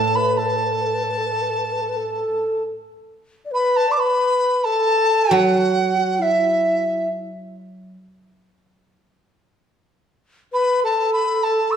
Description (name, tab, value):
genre	chinese traditional, Chinese chamber ensemble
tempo	68 BPM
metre	4/4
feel	rubato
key	A zhi mode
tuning	A4 = 442 Hz
part	mellow dizi	melody	0.0-11.8 s	E5 to E6	-20 LUFS	equal	none
part	breathy mellow xiao	second line	0.0-11.8 s	E4 to D5	-22 LUFS	equal	none
part	guzheng	accompaniment	0.0-8.0 s	A2 to F#3	-25 LUFS	right 1 dB	none
room	wet recital hall reverb, RT60 1.5 s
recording	none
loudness	-17 LUFS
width	side -8 dB against mid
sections	0.0-3.1 A section; 3.1-11.8 B section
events	none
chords	none